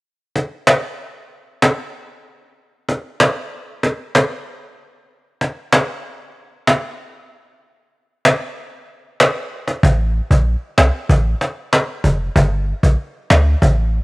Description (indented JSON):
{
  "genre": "dancehall",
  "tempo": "95 BPM",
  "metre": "4/4",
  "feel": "straight",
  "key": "unclear",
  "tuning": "A4 = 440 Hz",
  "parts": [
    { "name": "cajon", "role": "drums", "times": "0.4-13.8 s", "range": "none", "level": "-15 LUFS", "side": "equal", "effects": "cassette tape" },
    { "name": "clean 808-style bass", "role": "bass", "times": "9.8-14.0 s", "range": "F1 to D2", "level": "-15 LUFS", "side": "equal", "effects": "none" }
  ],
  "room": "small room ambience",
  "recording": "home recording on cassette",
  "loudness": "-15 LUFS",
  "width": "side -25 dB against mid",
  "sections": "0.0-9.8 A section; 9.8-14.0 B section",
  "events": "kick muted 7.3-9.8",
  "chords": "none"
}